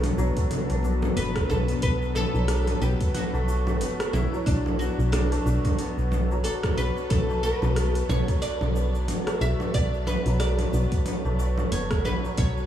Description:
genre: organic downtempo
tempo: 91 BPM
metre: 4/4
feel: swing 57% on 16ths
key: B minor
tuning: A4 = 440 Hz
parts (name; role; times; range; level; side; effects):
- oud; melody; 0.0-12.7 s; B3 to E5; -31 LUFS; right 1 dB; tape echo
- bowed-like drone; sustained chords; 0.0-1.8 s; B2 to B4; -35 LUFS; left 3 dB; built-in reverb, sidechain pumping
- santur; arpeggios; 0.0-12.7 s; F#3 to B4; -31 LUFS; left 2 dB; diffuse ambient delay
- woody FM bass; bass; 0.0-12.7 s; F#1 to B1; -25 LUFS; equal; sidechain pumping
- deep house drum kit; drums; 0.0-12.7 s; congas, hi-hat, rim click, shaker; -30 LUFS; right 1 dB; overdrive
- congas and bongos; percussion; 0.0-1.7 s; none; -38 LUFS; equal; none
- electronic kick drum; drums; 0.4-12.5 s; none; -26 LUFS; equal; none
room: moderate huge ambient reverb, RT60 9.7 s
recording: dreamy mix soaked in reverb, studio reverb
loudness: -22 LUFS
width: side -11 dB against mid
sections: 0.0-1.8 A section; 1.8-12.7 B section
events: none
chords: 0.0 Bm7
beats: 0.51 1.17 | 1.83 2.49 3.15 3.81 | 4.47 5.13 5.79 6.44 | 7.10 7.76 8.42 9.08 | 9.74 10.40 11.06 11.72 | 12.38

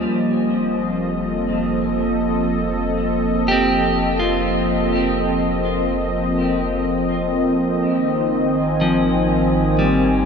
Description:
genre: ambient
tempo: free time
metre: none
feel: none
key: unclear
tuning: A4 = 439 Hz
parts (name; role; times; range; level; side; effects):
- warm analog pad; sustained chords; 0.0-10.3 s; Eb3 to Ab5; -19 LUFS; left 1 dB; wide subtle chorus
- clean electric guitar; arpeggios; 0.0-10.3 s; F3 to G4; -24 LUFS; equal; diffuse ambient delay
- warm sub bass; bass; 0.0-10.3 s; F1 to Ab1; -29 LUFS; equal; none
- analog drone; drone; 0.0-10.3 s; Bb3; -24 LUFS; right 3 dB; chorus
room: wet huge ambient reverb, RT60 9.3 s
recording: none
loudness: -17 LUFS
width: side -6 dB against mid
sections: 0.0-10.3 A section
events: none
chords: 0.1 F7; 7.9 Ab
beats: free time

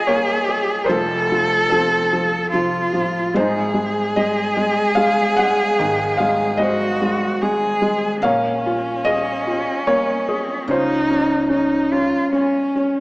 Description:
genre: acoustic folk-pop ballad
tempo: 74 BPM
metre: 3/4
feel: straight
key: unclear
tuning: A4 = 440 Hz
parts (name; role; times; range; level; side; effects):
- felt-muted upright piano; melody; 0.0-13.0 s; Eb3 to Gb5; -18 LUFS; equal; none
- rich cello; second line; 0.0-13.0 s; Db4 to A4; -20 LUFS; equal; none
- upright bass; bass; 0.9-12.1 s; F1 to Db2; -33 LUFS; equal; none
room: wet scoring stage reverb, RT60 1.5 s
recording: heard from further back in the room, small speaker sound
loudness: -16 LUFS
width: side -24 dB against mid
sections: 0.0-13.0 A section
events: none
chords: 0.0 Bbm7; 0.9 F; 3.4 Ab; 8.2 Bbm7; 10.7 Dbmaj7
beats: 0.10 | 0.91 1.72 2.54 | 3.36 4.17 4.99 | 5.80 6.61 7.42 | 8.23 9.05 9.86 | 10.68 11.50 12.33

